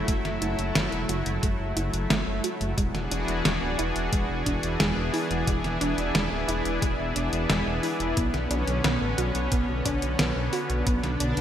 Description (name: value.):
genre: synthwave.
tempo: 89 BPM.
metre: 4/4.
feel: straight.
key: B minor.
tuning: A4 = 437 Hz.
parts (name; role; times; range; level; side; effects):
lush unison pad; sustained chords; 0.0-11.4 s; D3 to G#4; -28 LUFS; left 1 dB; chorus, sidechain pumping.
dark detuned saw bass; bass; 0.0-11.4 s; D1 to B1; -30 LUFS; equal; sidechain pumping.
wide unison pluck; arpeggios; 0.1-11.4 s; G#3 to F#4; -32 LUFS; right 2 dB; digital delay.
detuned 8-bit digital drum machine; drums; 0.1-11.4 s; hi-hat, snare drum; -29 LUFS; equal; gated reverb.
electronic kick drum; drums; 0.1-11.0 s; none; -28 LUFS; equal; none.
room: moderate lush hall reverb, RT60 2.5 s.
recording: bright 1980s-style digital production.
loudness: -24 LUFS.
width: side -10 dB against mid.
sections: 0.0-11.4 A section.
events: filter sweep on synth arpeggio sound 0.0-11.4.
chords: 0.0 F#m7; 2.8 E7; 8.2 Bmadd9.